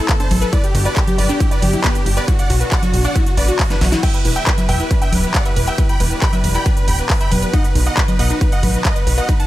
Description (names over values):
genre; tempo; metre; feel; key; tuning
uplifting trance; 137 BPM; 4/4; straight; E minor; A4 = 435 Hz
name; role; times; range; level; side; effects
supersaw chords; melody; 0.0-9.5 s; D4 to B5; -24 LUFS; right 1 dB; sidechain pumping, dub echo
clear grand piano; second line; 0.0-9.5 s; F#4 to B5; -28 LUFS; equal; sidechain pumping, dub echo
lush unison pad; sustained chords; 0.0-9.5 s; B2 to B4; -28 LUFS; equal; chorus, sidechain pumping
wide unison pluck; arpeggios; 0.0-9.4 s; B3 to E5; -26 LUFS; left 2 dB; auto-pan, sidechain pumping, dub echo
big-room dance drum kit; drums; 0.1-9.5 s; congas, crash cymbal, handclaps, hi-hat, ride cymbal, snare drum; -22 LUFS; equal; sidechain pumping on hats, sidechain pumping on cymbals, sidechain pumping on perc
electronic kick drum; drums; 0.1-9.4 s; none; -17 LUFS; equal; none
plucky analog bass; bass; 0.3-9.2 s; D1 to B1; -18 LUFS; equal; sidechain pumping
room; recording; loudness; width
little or no reverb; none; -14 LUFS; side -15 dB against mid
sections
0.0-4.0 A section; 4.0-9.5 A section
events
drop 0.0-4.0, 4.0-9.5; drum fill 3.7-4.0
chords
0.0 Am; 0.5 G; 2.3 Bm; 4.0 Em; 7.5 B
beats
0.09 | 0.53 0.97 1.40 1.84 | 2.28 2.72 3.16 3.59 | 4.03 4.47 4.91 5.34 | 5.78 6.22 6.66 7.10 | 7.54 7.97 8.41 8.85 | 9.29